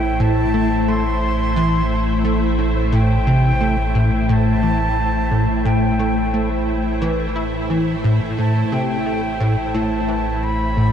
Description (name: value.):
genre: ambient, sequencer-driven space music.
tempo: 88 BPM.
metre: 4/4.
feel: straight.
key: A minor.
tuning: A4 = 439 Hz.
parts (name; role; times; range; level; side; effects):
mellow silver concert flute; melody; 0.0-10.9 s; G5 to C6; -25 LUFS; equal; analog delay.
evolving wavetable pad; sustained chords; 0.0-10.9 s; A2 to E5; -21 LUFS; left 1 dB; ensemble chorus, built-in reverb.
warm sub bass; bass; 0.0-10.9 s; A1; -23 LUFS; equal; none.
plucky analog bass; riff; 0.2-10.9 s; A2 to E4; -20 LUFS; equal; ensemble chorus, cassette tape, analog delay.
room: wet huge ambient reverb, RT60 7.8 s.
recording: dark, warm production.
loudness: -16 LUFS.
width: side -8 dB against mid.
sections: 0.0-10.9 A section.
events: none.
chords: 0.0 Am.